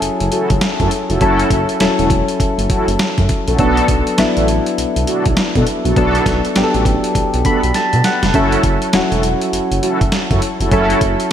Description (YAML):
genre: R&B, new jack swing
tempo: 101 BPM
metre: 4/4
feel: swing 62% on 16ths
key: B minor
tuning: A4 = 440 Hz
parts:
  - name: soft electric-piano-like synth keys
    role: accompaniment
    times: 0.0-11.3 s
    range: F#3 to B5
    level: -17 LUFS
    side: left 2 dB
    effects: chorus
  - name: smooth gliding synth bass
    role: bass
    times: 0.0-11.2 s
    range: E1 to B2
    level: -19 LUFS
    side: equal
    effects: none
  - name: dusty soul sampler-style drum kit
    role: drums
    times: 0.0-11.3 s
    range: hi-hat, kick drum, snare drum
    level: -18 LUFS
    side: equal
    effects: overdrive, gated reverb
  - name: mellow synth brass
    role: stabs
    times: 0.3-11.0 s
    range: B3 to A4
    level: -20 LUFS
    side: right 1 dB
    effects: chorus
room: moderate lush hall reverb, RT60 2.7 s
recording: bright 1980s-style digital production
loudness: -13 LUFS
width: side -9 dB against mid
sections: 0.0-11.3 A section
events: synth keys fill 7.2-8.3; drum fill 7.7-8.3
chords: 0.0 F#m7; 3.6 Bm7; 8.3 F#m7